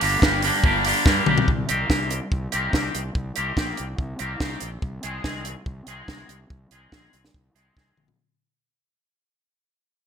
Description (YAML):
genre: indie rock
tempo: 143 BPM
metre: 4/4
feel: straight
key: C minor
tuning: A4 = 440 Hz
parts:
  - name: twangy electric guitar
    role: riff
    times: 0.0-8.0 s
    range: G2 to Ab4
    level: -24 LUFS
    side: equal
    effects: double-tracked left and right
  - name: fuzz fingered electric bass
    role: bass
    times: 0.0-8.1 s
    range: G1 to G2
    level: -30 LUFS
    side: equal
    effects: overdrive
  - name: compact cocktail drum kit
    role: drums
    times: 0.0-8.2 s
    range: hi-hat, kick drum, snare drum, toms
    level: -23 LUFS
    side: equal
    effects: none
room: light reverb, small room ambience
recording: bright 1980s-style digital production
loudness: -21 LUFS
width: side -7 dB against mid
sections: 0.0-1.5 A section; 1.5-8.2 B section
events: drum fill 1.1-1.5, 7.8-8.2; fade-out 1.5-8.2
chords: 0.0 Gm; 1.5 Cm7; 4.8 Ab/C